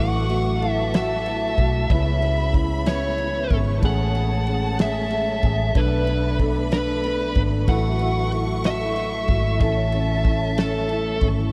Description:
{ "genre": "six-eight pop ballad", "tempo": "62 BPM (dotted quarters)", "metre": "6/8", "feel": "straight", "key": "A major", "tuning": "A4 = 440 Hz", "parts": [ { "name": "fuzz lead guitar", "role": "melody", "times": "0.0-11.3 s", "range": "A4 to F#5", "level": "-28 LUFS", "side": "equal", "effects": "distortion, diffuse ambient delay" }, { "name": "warm studio violin section", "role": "second line", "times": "0.0-11.5 s", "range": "A5 to C#6", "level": "-36 LUFS", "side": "equal", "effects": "diffuse ambient delay" }, { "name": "dark concert grand piano", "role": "accompaniment", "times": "0.0-11.5 s", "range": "A3 to A4", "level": "-31 LUFS", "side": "equal", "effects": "ensemble chorus" }, { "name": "tonewheel organ", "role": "sustained chords", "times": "0.0-11.5 s", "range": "C#3 to E4", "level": "-32 LUFS", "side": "equal", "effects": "chorus vibrato, slow rotary speaker" }, { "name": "vintage muted fingered electric bass", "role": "bass", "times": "0.0-11.5 s", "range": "G#1 to C#2", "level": "-26 LUFS", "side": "equal", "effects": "none" }, { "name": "damped 70s drum kit", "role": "drums", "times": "0.3-11.4 s", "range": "kick drum, ride cymbal, snare drum", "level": "-27 LUFS", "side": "equal", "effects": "none" } ], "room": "moderate huge ambient reverb, RT60 8.4 s", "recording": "dreamy mix soaked in reverb", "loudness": "-22 LUFS", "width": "mono", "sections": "0.0-11.5 A section", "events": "none", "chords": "0.0 F#m7/A; 1.9 C#m7; 3.8 Amaj7; 5.8 Bm7; 7.7 F#m7/A; 9.6 A", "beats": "0.94 | 1.90 2.87 | 3.83 4.79 | 5.75 6.72 | 7.68 8.64 | 9.61 10.57" }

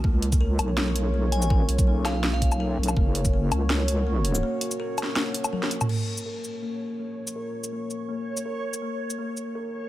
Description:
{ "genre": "half-time drum and bass", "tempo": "164 BPM", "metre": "4/4", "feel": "swing 54% on 16ths, half-time", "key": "Bb phrygian", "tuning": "A4 = 437 Hz", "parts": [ { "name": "dark analog pad", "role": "sustained chords", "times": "0.0-9.9 s", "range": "Ab3 to Db5", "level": "-34 LUFS", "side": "equal", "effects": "chorus, phaser, sidechain pumping" }, { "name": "kalimba", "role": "arpeggios", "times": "0.0-9.9 s", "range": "Bb3 to Bb4", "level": "-32 LUFS", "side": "left 2 dB", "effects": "vintage 12-bit sampler grit, low-pass filter, digital delay" }, { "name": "deep soft wobble bass", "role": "bass", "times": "0.0-4.4 s", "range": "Gb1 to Db2", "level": "-24 LUFS", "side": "equal", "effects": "chorus, tube saturation" }, { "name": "electronic kick drum", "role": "drums", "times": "0.0-3.3 s", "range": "none", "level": "-22 LUFS", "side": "equal", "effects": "overdrive" }, { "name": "drum and bass drum kit", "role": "drums", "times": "0.2-9.4 s", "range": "crash cymbal, hi-hat, shaker, snare drum, toms, woodblock", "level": "-28 LUFS", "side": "left 1 dB", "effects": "overdrive" }, { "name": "glassy synth bell", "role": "melody", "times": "1.3-2.6 s", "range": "F5 to Ab5", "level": "-36 LUFS", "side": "left 1 dB", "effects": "chorus, dub echo" }, { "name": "backwards swelling texture", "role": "texture", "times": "6.7-9.9 s", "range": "Db5", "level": "-36 LUFS", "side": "right 3 dB", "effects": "built-in reverb" } ], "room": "light reverb, digital ambience", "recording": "none", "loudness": "-23 LUFS", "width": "side -15 dB against mid", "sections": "0.0-5.9 A section; 5.9-9.9 B section", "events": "drop 0.0-5.9; break 4.4-5.9; drum fill 5.5-5.9; filter sweep on analog synth pad 5.9-9.9; filter sweep on kalimba 5.9-9.9", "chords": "0.0 Db; 3.0 Gb; 5.9 Bbm7; 8.8 Ab9sus4 (rootless)", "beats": "| 0.04 0.41 0.77 1.14 | 1.50 1.87 2.23 2.60 | 2.97 3.33 3.70 4.07 | 4.43 4.80 5.16 5.53 | 5.89 6.26 6.63 6.99 | 7.36 7.72 8.09 8.46 | 8.82 9.19 9.55" }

